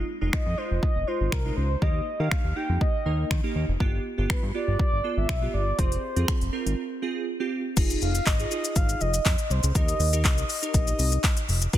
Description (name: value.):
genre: dance-pop.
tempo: 121 BPM.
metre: 4/4.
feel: straight.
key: F minor.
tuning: A4 = 439 Hz.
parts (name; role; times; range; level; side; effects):
glassy digital keys; accompaniment; 0.0-11.8 s; Ab3 to B4; -32 LUFS; right 3 dB; chorus.
fat analog bass; bass; 0.0-11.8 s; F1 to Eb3; -26 LUFS; equal; sidechain pumping.
mellow horn-like synth lead; melody; 0.3-11.4 s; Bb4 to G5; -31 LUFS; equal; chorus, phaser, ping-pong delay.
deep house drum kit; drums; 0.3-11.8 s; crash cymbal, finger snaps, handclaps, hi-hat, kick drum, shaker; -25 LUFS; equal; soft clipping on snare.
room: light reverb.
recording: dense, heavily limited modern master.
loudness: -23 LUFS.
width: side -12 dB against mid.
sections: 0.0-7.8 A section; 7.8-11.8 B section.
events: break 6.8-7.8.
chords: 0.0 Fm7; 1.8 Eb; 3.8 G7; 5.8 Fm; 7.8 Fm7; 9.8 Eb.